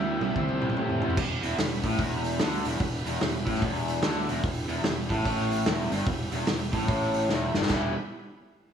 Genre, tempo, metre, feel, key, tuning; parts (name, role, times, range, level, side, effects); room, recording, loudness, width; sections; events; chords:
blues rock power trio and southern rock; 147 BPM; 4/4; swing 63% on 8ths; E minor; A4 = 441 Hz
bright tonewheel organ; sustained chords; 0.0-8.0 s; A3 to D5; -38 LUFS; right 3 dB; slow rotary speaker, overdrive
raw garage guitar; riff; 0.0-7.9 s; E2 to G4; -29 LUFS; left 1 dB; overdrive
fuzz fingered electric bass; bass; 0.0-7.9 s; E1 to A2; -32 LUFS; equal; overdrive
vintage drum kit; drums; 0.2-7.8 s; crash cymbal, hi-hat, kick drum, snare drum, toms; -29 LUFS; right 1 dB
wet recital hall reverb, RT60 1.5 s; big arena sound; -25 LUFS; side -8 dB against mid
0.0-1.2 A section; 1.2-7.7 B section; 7.7-8.7 C section
drum fill 0.0-1.2, 7.3-7.7
0.4 C; 1.2 Em